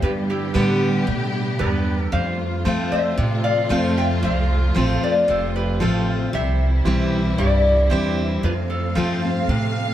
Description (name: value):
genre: honky-tonk and classic country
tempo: 114 BPM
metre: 4/4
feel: straight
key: unclear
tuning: A4 = 440 Hz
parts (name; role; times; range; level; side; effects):
- lap resonator guitar; melody; 0.0-9.2 s; E4 to G5; -24 LUFS; left 1 dB; none
- picked steel-string acoustic guitar; accompaniment; 0.0-9.9 s; F2 to G4; -23 LUFS; left 1 dB; none
- warm symphonic string section; sustained chords; 0.0-9.9 s; C3 to F5; -27 LUFS; right 1 dB; none
- upright bass; bass; 0.0-9.9 s; F1 to B2; -22 LUFS; right 1 dB; none
- bright grand piano; accompaniment; 0.5-9.3 s; B3 to C5; -31 LUFS; right 4 dB; none
room: moderate plate reverb, RT60 2.9 s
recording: heard from further back in the room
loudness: -18 LUFS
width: side -12 dB against mid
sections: 0.0-9.9 A section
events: none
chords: 0.0 G; 2.1 F; 6.3 C; 8.4 F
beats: | 0.02 0.54 1.07 1.60 | 2.12 2.65 3.17 3.70 | 4.23 4.75 5.28 5.80 | 6.33 6.86 7.38 7.91 | 8.43 8.96 9.48